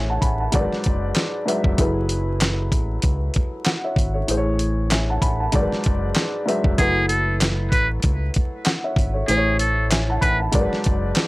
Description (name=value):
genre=hip hop, boom-bap hip-hop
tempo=96 BPM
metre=4/4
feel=swing 58% on 16ths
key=F# minor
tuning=A4 = 438 Hz
part: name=dark upright piano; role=accompaniment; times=0.0-11.3 s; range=G#2 to B5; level=-24 LUFS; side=equal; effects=high-pass filter, low-pass filter
part: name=deep dub fingered electric bass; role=bass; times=0.0-11.1 s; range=E#1 to C#2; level=-24 LUFS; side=equal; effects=tube saturation
part: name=dusty soul sampler-style drum kit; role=drums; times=0.2-11.3 s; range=handclaps, hi-hat, kick drum, snare drum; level=-21 LUFS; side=equal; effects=none
part: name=trumpet with metal mute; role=melody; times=6.8-10.4 s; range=G#4 to B4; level=-22 LUFS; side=equal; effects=high-pass filter, low-pass filter, tape echo
room=little or no reverb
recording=dry, gritty hardware recording, vinyl crackle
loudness=-18 LUFS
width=side -20 dB against mid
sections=0.0-6.8 A section; 6.8-11.3 B section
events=none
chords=0.0 Amaj7; 0.5 G#m7b5; 1.8 F#m11; 4.3 Amaj7; 5.5 G#m7b5; 6.8 F#m11; 9.3 A; 10.5 G#m7b5